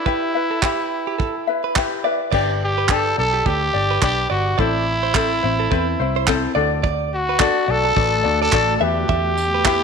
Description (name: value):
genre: acoustic pop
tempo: 106 BPM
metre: 4/4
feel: swing 60% on 16ths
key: unclear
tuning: A4 = 442 Hz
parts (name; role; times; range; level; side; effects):
- growling trumpet; melody; 0.0-9.8 s; E4 to A4; -21 LUFS; right 1 dB; none
- ukulele; accompaniment; 0.0-9.8 s; C4 to E5; -22 LUFS; left 8 dB; none
- direct-recorded clean electric guitar; arpeggios; 0.1-9.8 s; G4 to E5; -27 LUFS; right 9 dB; none
- cloth-damped thuddy drum kit; drums; 0.1-9.8 s; crash cymbal, handclaps, kick drum, tambourine; -22 LUFS; right 3 dB; none
- vintage muted fingered electric bass; bass; 2.3-9.8 s; G1 to E2; -24 LUFS; equal; none
- granular cloud pad; sustained chords; 7.5-9.8 s; D3 to G4; -29 LUFS; right 1 dB; built-in reverb
room: moderate echo chamber reverb, RT60 1.6 s, small room ambience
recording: 1960s-style stereo with parts hard left and right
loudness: -17 LUFS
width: side -5 dB against mid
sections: 0.0-2.3 A section; 2.3-9.8 B section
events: none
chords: 0.0 Em; 2.3 G; 4.6 Am; 6.6 D; 8.8 Em